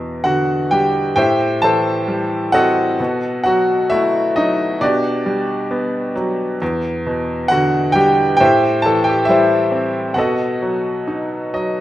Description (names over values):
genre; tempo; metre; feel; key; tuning
classical, lyrical solo piano; 66 BPM; 4/4; rubato; E minor; A4 = 441 Hz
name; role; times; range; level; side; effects
bright baby grand piano; solo; 0.0-11.8 s; E2 to A5; -14 LUFS; equal; none
room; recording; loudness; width
moderate recital hall reverb, RT60 1.3 s; minimal, uncompressed stereo recording; -14 LUFS; side -14 dB against mid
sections
0.0-11.8 A section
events
grand piano fill 11.1-11.8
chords
0.0 Em7; 1.2 Am7; 3.0 B7; 4.8 Gmaj7/B; 6.6 Em7; 8.4 Am7; 10.2 B7